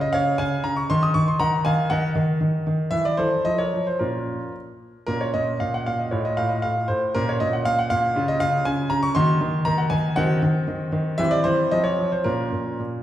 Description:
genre	classical-period piano sonatina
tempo	117 BPM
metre	2/4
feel	rubato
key	Bb minor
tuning	A4 = 444 Hz
part	warm grand piano	solo	0.0-13.0 s	A2 to Eb6	-20 LUFS	equal	none
room	wet recital hall reverb, RT60 1.6 s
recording	heard from further back in the room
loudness	-20 LUFS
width	side -12 dB against mid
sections	0.0-5.1 A section; 5.1-13.0 B section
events	none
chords	0.0 Db69; 0.9 Ebm; 1.9 N.C.; 2.9 C/E; 3.5 Dbmaj13/F; 4.0 Bbm; 6.1 F7/A; 7.2 Bbm; 8.2 Db69; 9.2 Ebm; 10.2 Cdim/Eb; 11.2 C/E; 11.7 F5; 12.3 Bbm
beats	0.39 | 0.90 1.41 | 1.91 2.41 | 2.93 3.46 | 4.01 4.55 | 5.09 5.61 | 6.12 6.64 | 7.15 7.67 | 8.17 8.67 | 9.17 9.67 | 10.18 10.69 | 11.20 11.73 | 12.26 12.80

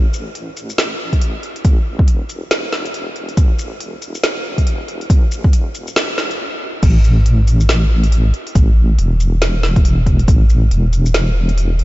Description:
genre	deep dubstep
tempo	139 BPM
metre	4/4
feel	swing 60% on 16ths, half-time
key	unclear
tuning	A4 = 440 Hz
part	deep soft wobble bass	bass	0.0-11.8 s	E1 to A1	-15 LUFS	equal	chorus, high-pass filter
part	deep house drum kit	drums	0.1-11.8 s	crash cymbal, hi-hat, shaker, snare drum	-22 LUFS	equal	none
part	electronic kick drum	drums	1.1-10.4 s	none	-12 LUFS	equal	none
room	light reverb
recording	nothing above 7.7 kHz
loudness	-13 LUFS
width	side -18 dB against mid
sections	0.0-6.8 A section; 6.8-11.8 B section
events	build-up 0.0-6.8; stop 6.4-6.8; drop 6.8-11.8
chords	none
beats	0.35 0.78 1.22 | 1.65 2.08 2.51 2.94 | 3.37 3.81 4.24 4.67 | 5.10 5.53 5.96 6.40 | 6.83 7.26 7.69 8.12 | 8.55 8.99 9.42 9.85 | 10.28 10.71 11.14 11.58

